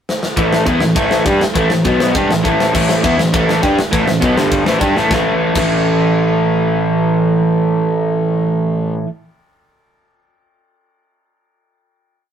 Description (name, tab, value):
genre	punk rock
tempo	203 BPM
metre	4/4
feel	straight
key	unclear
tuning	A4 = 441 Hz
part	tight metal drum kit	drums	0.1-5.6 s	crash cymbal, kick drum, ride cymbal, snare drum	-19 LUFS	left 1 dB	none
part	crunchy overdriven guitar	riff	0.4-9.1 s	G2 to G4	-13 LUFS	right 1 dB	none
part	fuzz picked electric bass	bass	0.4-8.9 s	G1 to G2	-22 LUFS	left 1 dB	overdrive
room	light reverb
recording	rough rehearsal-room recording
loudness	-12 LUFS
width	side -8 dB against mid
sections	0.0-0.4 pickup bar; 0.4-5.1 riff; 5.1-7.5 final chord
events	drum fill 0.1, 5.0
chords	0.4 A5; 1.9 B5; 2.1 A5; 4.4 G5; 4.7 A5